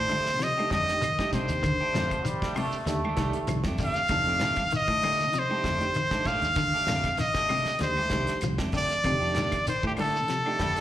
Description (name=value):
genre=afrobeat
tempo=97 BPM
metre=4/4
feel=swing 54% on 16ths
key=F mixolydian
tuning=A4 = 440 Hz
part: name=brilliant trumpet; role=melody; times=0.0-10.8 s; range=G4 to F5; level=-26 LUFS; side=equal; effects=slapback echo
part: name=clean electric guitar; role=arpeggios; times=0.0-10.8 s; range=C3 to F3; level=-35 LUFS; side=left 5 dB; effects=none
part: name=electric guitar at the edge of break-up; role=stabs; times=0.0-10.8 s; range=Eb3 to G4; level=-38 LUFS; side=right 5 dB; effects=slapback echo
part: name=fingered electric bass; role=bass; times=0.0-10.8 s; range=C2 to F3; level=-32 LUFS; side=equal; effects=none
part: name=damped 70s drum kit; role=drums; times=0.1-10.8 s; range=hi-hat, kick drum, snare drum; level=-35 LUFS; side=equal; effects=none
part: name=claves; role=percussion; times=0.1-10.6 s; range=none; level=-42 LUFS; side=left 2 dB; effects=none
part: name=congas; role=percussion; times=0.1-10.8 s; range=none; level=-36 LUFS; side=right 1 dB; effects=none
part: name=shekere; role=percussion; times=0.1-10.8 s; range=none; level=-36 LUFS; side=right 1 dB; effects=none
part: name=barky reed electric piano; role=accompaniment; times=0.4-10.8 s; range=A3 to A4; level=-36 LUFS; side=right 3 dB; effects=overdrive, fast tremolo, slapback echo
part: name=muted trombone section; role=second line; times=2.0-3.6, 10.6-10.7 s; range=F3 to A3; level=-33 LUFS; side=right 1 dB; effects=slapback echo
room=small room ambience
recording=live gig heard through the venue's PA, club reverb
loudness=-24 LUFS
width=side -12 dB against mid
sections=0.0-10.8 A section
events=none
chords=0.0 F13